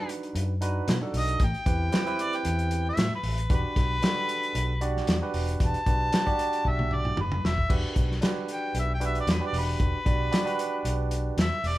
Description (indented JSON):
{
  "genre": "straight-eighth soul blues",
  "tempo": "114 BPM",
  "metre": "4/4",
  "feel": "swing 54% on 16ths",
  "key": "E minor",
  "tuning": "A4 = 443 Hz",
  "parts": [
    { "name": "mellow harmonica", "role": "melody", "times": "0.0-11.8 s", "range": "B4 to A5", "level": "-30 LUFS", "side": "left 1 dB", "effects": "overdrive" },
    { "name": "barky tine electric piano", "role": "accompaniment", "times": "0.0-11.4 s", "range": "C4 to D5", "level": "-32 LUFS", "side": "right 4 dB", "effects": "medium stereo tremolo" },
    { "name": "warm soul drum kit", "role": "drums", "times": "0.1-11.8 s", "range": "crash cymbal, hi-hat, kick drum, snare drum, toms", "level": "-28 LUFS", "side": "equal", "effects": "none" },
    { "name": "vintage muted fingered electric bass", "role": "bass", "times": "0.3-11.8 s", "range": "E1 to B2", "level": "-28 LUFS", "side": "equal", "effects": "none" }
  ],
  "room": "light reverb",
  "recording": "band playing live in one room",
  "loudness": "-24 LUFS",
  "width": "side -16 dB against mid",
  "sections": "0.0-7.7 A section; 7.7-11.8 B section",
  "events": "drum fill 6.7-7.7; harmonica solo 7.7-11.8",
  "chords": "0.0 B7#9; 1.4 Am9; 3.5 Em9",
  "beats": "0.35 0.88 | 1.40 1.93 2.45 2.98 | 3.50 4.03 4.55 5.08 | 5.60 6.12 6.65 7.17 | 7.70 8.22 8.75 9.27 | 9.80 10.32 10.85 11.37"
}